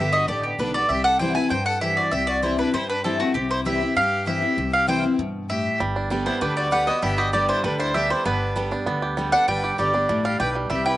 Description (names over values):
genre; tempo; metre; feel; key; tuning
bluegrass; 196 BPM; 4/4; straight; G major; A4 = 441 Hz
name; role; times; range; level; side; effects
mandolin; melody; 0.0-11.0 s; F#4 to Ab5; -22 LUFS; right 1 dB; slapback echo
bright fiddle; second line; 0.0-11.0 s; A3 to C5; -32 LUFS; left 3 dB; slapback echo
picked steel-string acoustic guitar; accompaniment; 0.0-11.0 s; G2 to G4; -26 LUFS; left 2 dB; none
upright bass; bass; 0.0-11.0 s; G1 to G2; -30 LUFS; equal; none
bluegrass banjo; arpeggios; 5.8-11.0 s; G3 to G4; -26 LUFS; right 3 dB; slapback echo
room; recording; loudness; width
little or no reverb; recorded outdoors, with no room sound, nothing above 10.6 kHz; -20 LUFS; side -15 dB against mid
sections
0.0-11.0 A section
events
none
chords
0.0 G; 0.9 C; 5.8 G